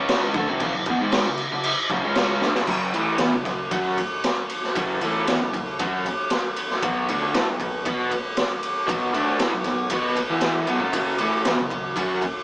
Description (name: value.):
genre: garage rock duo or trio.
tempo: 116 BPM.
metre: 4/4.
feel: straight.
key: F# minor.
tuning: A4 = 440 Hz.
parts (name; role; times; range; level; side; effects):
raw garage guitar; riff; 0.0-12.2 s; E2 to B4; -23 LUFS; equal; overdrive.
raw garage drum kit; drums; 0.1-12.3 s; crash cymbal, kick drum, ride cymbal, snare drum; -23 LUFS; equal; none.
room: moderate studio reverb, RT60 0.6 s.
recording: band playing live in one room, small speaker sound.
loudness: -20 LUFS.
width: side -24 dB against mid.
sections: 0.0-2.7 A section; 2.7-12.4 B section.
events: drum fill 2.4.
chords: 0.0 F#5; 2.7 F#m; 6.8 B5; 10.9 F#m.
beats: 0.09 | 0.60 1.12 1.64 2.16 | 2.68 3.20 3.72 4.24 | 4.75 5.27 5.79 6.30 | 6.82 7.34 7.85 8.37 | 8.88 9.40 9.91 10.43 | 10.94 11.45 11.97.